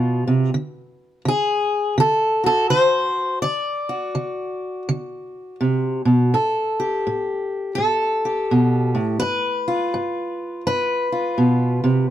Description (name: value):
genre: acoustic country blues, solo or duo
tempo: 83 BPM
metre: 4/4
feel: swing 62% on 8ths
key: unclear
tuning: A4 = 440 Hz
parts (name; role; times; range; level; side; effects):
- fingerpicked steel-string acoustic guitar; solo; 0.0-12.1 s; G2 to D5; -18 LUFS; equal; none
room: light reverb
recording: close, detailed microphones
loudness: -18 LUFS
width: side -12 dB against mid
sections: 0.0-12.1 A section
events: none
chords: 0.0 G7 (rootless); 0.5 D7; 6.3 Gadd9/A; 9.2 G7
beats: | 0.55 1.27 1.99 2.71 | 3.43 4.16 4.88 5.60 | 6.32 7.04 7.77 8.49 | 9.21 9.94 10.66 11.38